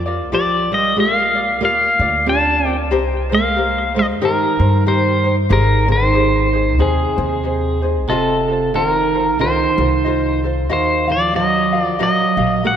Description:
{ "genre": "Hawaiian", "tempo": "92 BPM", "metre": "4/4", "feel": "swing 60% on 8ths", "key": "Bb major", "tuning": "A4 = 440 Hz", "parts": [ { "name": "pedal steel guitar", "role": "melody", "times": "0.0-12.8 s", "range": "Ab4 to A5", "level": "-17 LUFS", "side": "left 1 dB", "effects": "ping-pong delay" }, { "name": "ukulele", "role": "accompaniment", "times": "0.0-12.8 s", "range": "Eb4 to F5", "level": "-22 LUFS", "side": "left 4 dB", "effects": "none" }, { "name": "upright bass", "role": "bass", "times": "0.0-12.8 s", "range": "F1 to G2", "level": "-20 LUFS", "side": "equal", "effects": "none" }, { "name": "fingerpicked steel-string acoustic guitar", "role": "second line", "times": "0.3-12.8 s", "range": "C3 to D4", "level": "-21 LUFS", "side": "right 5 dB", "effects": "none" } ], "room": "moderate concert hall reverb, RT60 2.2 s", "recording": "none", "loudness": "-14 LUFS", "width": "side -9 dB against mid", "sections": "0.0-12.8 A section", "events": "none", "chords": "0.0 Bb6; 2.9 Cm7; 5.5 Abmaj7; 8.1 F7; 10.7 Ebmadd9" }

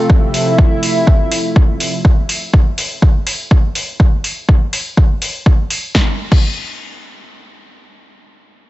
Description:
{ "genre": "melodic techno", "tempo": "123 BPM", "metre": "4/4", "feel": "straight", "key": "unclear", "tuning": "A4 = 440 Hz", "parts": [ { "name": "lush unison pad", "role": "sustained chords", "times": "0.0-2.0 s", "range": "C3 to E4", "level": "-17 LUFS", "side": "equal", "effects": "chorus, sidechain pumping" }, { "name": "electronic kick drum", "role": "drums", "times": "0.1-6.5 s", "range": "none", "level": "-10 LUFS", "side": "equal", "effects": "overdrive" }, { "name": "deep house drum kit", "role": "drums", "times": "0.3-6.5 s", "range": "crash cymbal, hi-hat, snare drum", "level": "-20 LUFS", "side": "equal", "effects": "overdrive" } ], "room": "little or no reverb", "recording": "nothing above 7.9 kHz", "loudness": "-12 LUFS", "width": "side -17 dB against mid", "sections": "0.0-5.9 A section; 5.9-8.7 B section", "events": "none", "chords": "0.0 F; 2.0 N.C." }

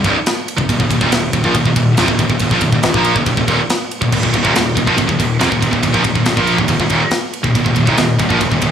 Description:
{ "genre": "heavy metal", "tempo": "140 BPM", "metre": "4/4", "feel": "straight", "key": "unclear", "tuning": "A4 = 442 Hz", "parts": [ { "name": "high-gain distorted guitar", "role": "riff", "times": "0.0-8.7 s", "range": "C2 to Bb3", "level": "-15 LUFS", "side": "right 1 dB", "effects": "distortion" }, { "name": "fuzz fingered electric bass", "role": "bass", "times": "0.0-8.7 s", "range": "C1 to Bb1", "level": "-20 LUFS", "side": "equal", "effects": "overdrive" }, { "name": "tight metal drum kit", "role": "drums", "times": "0.0-8.7 s", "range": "crash cymbal, kick drum, ride cymbal, snare drum", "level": "-18 LUFS", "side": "equal", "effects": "none" }, { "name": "scooped high-gain guitar", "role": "riff", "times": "4.1-8.7 s", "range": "Eb2 to Bb3", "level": "-18 LUFS", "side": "equal", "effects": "distortion" } ], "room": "small room ambience", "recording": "studio ambience", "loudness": "-12 LUFS", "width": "side -8 dB against mid", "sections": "0.0-8.7 A section", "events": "none", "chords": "0.0 C5; 0.7 Eb5" }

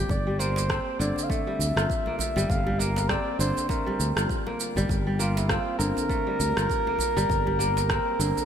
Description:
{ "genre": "organic downtempo", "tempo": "100 BPM", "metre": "4/4", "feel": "swing 58% on 16ths", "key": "G dorian", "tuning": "A4 = 440 Hz", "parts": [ { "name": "kora", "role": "arpeggios", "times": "0.0-8.4 s", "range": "D3 to G4", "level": "-30 LUFS", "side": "equal", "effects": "ping-pong delay" }, { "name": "sustaining fretless electric bass", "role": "bass", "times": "0.0-8.3 s", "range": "G1 to D2", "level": "-27 LUFS", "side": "equal", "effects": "none" }, { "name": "trumpet with bucket mute", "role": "melody", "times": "0.1-8.4 s", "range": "E4 to F5", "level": "-29 LUFS", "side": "equal", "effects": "ping-pong delay" }, { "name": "electronic kick drum", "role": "drums", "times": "0.1-8.0 s", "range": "none", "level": "-30 LUFS", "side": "equal", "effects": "none" }, { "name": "electronic shaker and rim click", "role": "drums", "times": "0.1-8.4 s", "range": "none", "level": "-32 LUFS", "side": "right 2 dB", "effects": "none" }, { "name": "djembe", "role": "percussion", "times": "0.1-8.4 s", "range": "none", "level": "-38 LUFS", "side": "right 1 dB", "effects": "none" } ], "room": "moderate lush hall reverb, RT60 2.7 s", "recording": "bright 1980s-style digital production", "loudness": "-23 LUFS", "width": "side -8 dB against mid", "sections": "0.0-8.4 A section", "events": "none", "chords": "0.0 Gm7" }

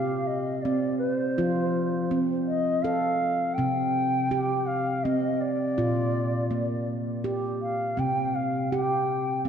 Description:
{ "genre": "world meditative, meditative tuned percussion", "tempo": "82 BPM", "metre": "3/4", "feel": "straight", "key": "C dorian", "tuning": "A4 = 439 Hz", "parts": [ { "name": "bass bansuri", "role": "melody", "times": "0.0-9.5 s", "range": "C5 to G5", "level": "-28 LUFS", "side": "left 1 dB", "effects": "diffuse ambient delay" }, { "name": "handpan", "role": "arpeggios", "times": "0.0-9.5 s", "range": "Bb2 to A4", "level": "-26 LUFS", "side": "right 1 dB", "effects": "none" } ], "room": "wet church reverb, RT60 2.8 s", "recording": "dark, warm production", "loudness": "-24 LUFS", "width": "side -8 dB against mid", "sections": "0.0-9.5 A section", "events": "none", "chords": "0.0 C5; 1.4 F; 3.6 C5; 5.8 Bb; 8.0 C5" }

